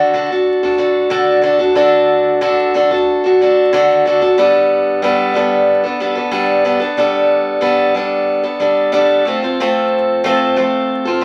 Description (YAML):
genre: rock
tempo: 92 BPM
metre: 4/4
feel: straight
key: D mixolydian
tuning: A4 = 440 Hz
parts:
  - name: picked acoustic archtop guitar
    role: solo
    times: 0.0-11.2 s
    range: D3 to A4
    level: -14 LUFS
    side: equal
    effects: none
room: moderate studio reverb, RT60 0.5 s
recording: vinyl crackle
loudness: -14 LUFS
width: mono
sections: 0.0-11.2 A section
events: none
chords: 0.0 D; 4.4 Gadd9; 9.3 F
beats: 0.45 1.11 | 1.76 2.41 3.07 3.72 | 4.37 5.03 5.68 6.33 | 6.98 7.63 8.29 8.94 | 9.59 10.24 10.89